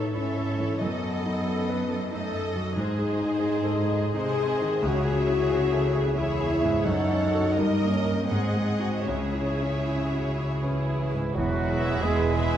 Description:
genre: classical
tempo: 74-94 BPM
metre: 3/4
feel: rubato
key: C# minor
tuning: A4 = 440 Hz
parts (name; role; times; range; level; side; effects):
- clear concert grand piano; melody; 0.0-12.6 s; E1 to B4; -28 LUFS; equal; none
- warm symphonic violin section; melody; 0.0-12.6 s; E4 to F#5; -39 LUFS; left 3 dB; none
- rich symphonic violin section; second line; 0.0-12.6 s; B4 to E5; -36 LUFS; left 2 dB; none
- rich symphonic viola section; accompaniment; 0.0-12.6 s; E4 to A#4; -35 LUFS; right 3 dB; none
- mellow French horn section; sustained chords; 0.0-12.6 s; A3 to B4; -28 LUFS; left 3 dB; none
- rich symphonic cello section; bass; 0.0-12.6 s; E2 to C#3; -32 LUFS; right 2 dB; none
- clear clarinet; second line; 10.6-12.6 s; E4 to G#4; -38 LUFS; equal; none
- dark bassoon; accompaniment; 10.6-12.6 s; E3 to G#3; -32 LUFS; right 4 dB; none
- clear trumpet section; stabs; 10.6-12.6 s; E4 to G#4; -34 LUFS; right 4 dB; none
- bright concert flute; second line; 11.3-12.6 s; E5; -37 LUFS; equal; none
- warm cor anglais; second line; 11.4-12.6 s; B4; -38 LUFS; right 2 dB; none
- warm trombone section; sustained chords; 11.4-12.6 s; E3 to G#3; -39 LUFS; right 5 dB; none
- warm studio double bass section; bass; 11.4-12.6 s; E1; -29 LUFS; right 4 dB; none
room: moderate concert hall reverb, RT60 2.1 s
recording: dark, warm production, lossy compression artefacts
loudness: -23 LUFS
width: side -10 dB against mid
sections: 0.0-11.4 A section; 11.4-12.6 B section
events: none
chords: 0.0 A; 0.8 D#dim/F#; 2.8 G#; 4.8 C#m; 6.9 F#m; 7.6 D#7/G; 8.3 G#7; 9.1 C#m; 11.4 E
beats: 0.15 | 0.82 1.48 2.12 | 2.77 3.42 4.15 | 4.84 5.50 6.17 | 6.86 7.56 8.29 | 9.06 9.85 10.62 | 11.36 12.02

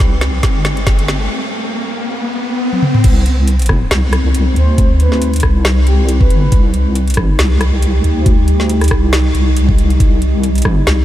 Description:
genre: deep dubstep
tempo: 138 BPM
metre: 4/4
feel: swing 55% on 16ths, half-time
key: C harmonic minor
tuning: A4 = 442 Hz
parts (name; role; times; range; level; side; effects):
- deep dark ambient pad; sustained chords; 0.0-11.0 s; G3 to G4; -22 LUFS; equal; chorus, built-in reverb
- deep soft wobble bass; bass; 0.0-11.0 s; G1 to D2; -13 LUFS; equal; chorus
- electronic kick drum; drums; 0.0-10.7 s; none; -13 LUFS; equal; none
- garage drum kit; drums; 0.0-11.0 s; crash cymbal, hi-hat, rim click, snare drum, toms; -20 LUFS; equal; none
- riser; sound effects; 0.0-3.0 s; none; -22 LUFS; left 2 dB; none
- wind-like tuned noise texture; texture; 0.0-1.3 s; C4; -28 LUFS; right 1 dB; built-in reverb
- breathy flute-like synth lead; melody; 4.6-6.6 s; G4 to C5; -27 LUFS; equal; tremolo, analog chorus, dub echo
room: light reverb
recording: vinyl crackle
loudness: -11 LUFS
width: side -13 dB against mid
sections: 0.0-3.0 A section; 3.0-11.0 B section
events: build-up 0.0-3.0; drum fill 0.0-1.3, 2.7-3.0; riser 0.0-3.0; break 1.3-3.0; drop 3.0-11.0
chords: 0.0 Cm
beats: 0.00 0.43 0.87 | 1.30 1.74 2.17 2.61 | 3.04 3.48 3.91 4.35 | 4.78 5.22 5.65 6.09 | 6.52 6.96 7.39 7.83 | 8.26 8.70 9.13 9.56 | 10.00 10.43 10.87

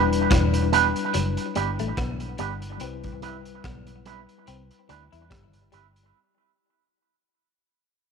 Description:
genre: lovers rock reggae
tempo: 72 BPM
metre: 4/4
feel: swing 56% on 16ths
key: unclear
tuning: A4 = 439 Hz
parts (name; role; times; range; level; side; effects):
- bright tine electric piano; accompaniment; 0.0-6.2 s; G3 to B4; -28 LUFS; left 9 dB; medium stereo tremolo, tape echo
- electric guitar with an envelope filter; stabs; 0.0-5.9 s; G3 to B4; -25 LUFS; right 12 dB; tape echo
- vintage muted fingered electric bass; bass; 0.0-6.1 s; E1 to E2; -28 LUFS; right 1 dB; none
- crunchy breakbeat drum kit; drums; 0.1-6.1 s; hi-hat, kick drum, rim click; -28 LUFS; right 1 dB; none
- electric guitar through a small old amp; riff; 0.3-6.0 s; E3 to E4; -35 LUFS; left 11 dB; tape echo
room: moderate echo chamber reverb, RT60 1.9 s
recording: 1960s-style stereo with parts hard left and right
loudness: -22 LUFS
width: side -6 dB against mid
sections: 0.0-6.1 A section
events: fade-out 0.0-6.1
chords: 0.0 Em7; 2.8 Cmaj7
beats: 0.31 1.14 1.98 | 2.81 3.64 4.48 5.31

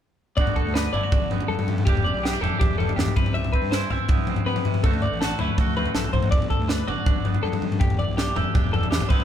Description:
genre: math rock and midwest emo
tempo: 161 BPM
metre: 4/4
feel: straight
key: G major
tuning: A4 = 441 Hz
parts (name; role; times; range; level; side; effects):
- twangy electric guitar; accompaniment; 0.4-9.2 s; E2 to G4; -30 LUFS; right 7 dB; none
- twelve-string electric guitar; arpeggios; 0.4-9.2 s; G4 to E5; -28 LUFS; left 4 dB; spring reverb
- fuzz fingered electric bass; bass; 0.4-9.2 s; E1 to C3; -28 LUFS; right 1 dB; overdrive
- crisp fusion drum kit; drums; 0.4-9.2 s; kick drum, snare drum, toms; -22 LUFS; left 1 dB; none
room: light reverb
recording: band playing live in one room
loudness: -20 LUFS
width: side -10 dB against mid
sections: 0.4-9.2 A section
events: none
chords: 0.4 Gmaj7; 1.9 Em7; 3.2 Cmaj7; 4.8 D7; 6.3 Gmaj7; 7.8 Em7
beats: | 0.37 0.74 1.12 1.49 | 1.86 2.23 2.60 2.98 | 3.35 3.72 4.09 4.46 | 4.84 5.21 5.58 5.95 | 6.32 6.69 7.06 7.43 | 7.81 8.18 8.55 8.92

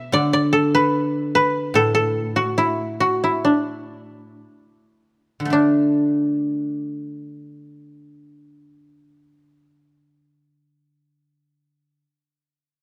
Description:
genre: chinese traditional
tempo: 50-74 BPM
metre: 2/4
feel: straight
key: D gong mode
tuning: A4 = 440 Hz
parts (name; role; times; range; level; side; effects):
- koto; melody; 0.0-8.6 s; D4 to E5; -21 LUFS; equal; none
- guzheng; accompaniment; 0.0-12.0 s; A2 to D4; -24 LUFS; equal; none
room: light reverb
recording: close, detailed microphones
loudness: -20 LUFS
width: mono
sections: 0.0-5.5 A section; 5.5-10.2 B section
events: slowing down 1.8-5.5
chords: none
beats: | 0.14 0.95 | 1.76 2.58 | 3.46 4.42 | 5.53 6.71 | 7.87 9.03

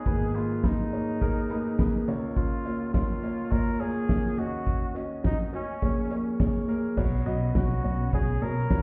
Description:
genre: piano-driven pop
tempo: 104 BPM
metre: 4/4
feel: swing 56% on 16ths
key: unclear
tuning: A4 = 440 Hz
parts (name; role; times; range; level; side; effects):
- clear trumpet; melody; 0.0-8.8 s; Db4 to Bb4; -38 LUFS; equal; none
- clear grand piano; accompaniment; 0.0-8.8 s; Ab1 to Eb5; -32 LUFS; equal; none
- loose indie drum kit; drums; 0.1-8.8 s; crash cymbal, hi-hat, kick drum, snare drum; -29 LUFS; equal; none
- vintage muted picked electric bass; bass; 7.0-8.8 s; B1 to B2; -30 LUFS; equal; none
room: light reverb, small room ambience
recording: heard muffled through a wall, stone room reverb, EQ, nothing above 10.5 kHz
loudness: -27 LUFS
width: mono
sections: 0.0-7.0 A section; 7.0-8.8 B section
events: none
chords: 0.1 Abmadd9; 2.1 Db6; 4.4 Ebm7; 5.8 Bbm7; 7.0 Bsus2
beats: | 0.06 0.63 1.21 1.79 | 2.36 2.94 3.52 4.09 | 4.67 5.25 5.82 6.40 | 6.98 7.55 8.13 8.71

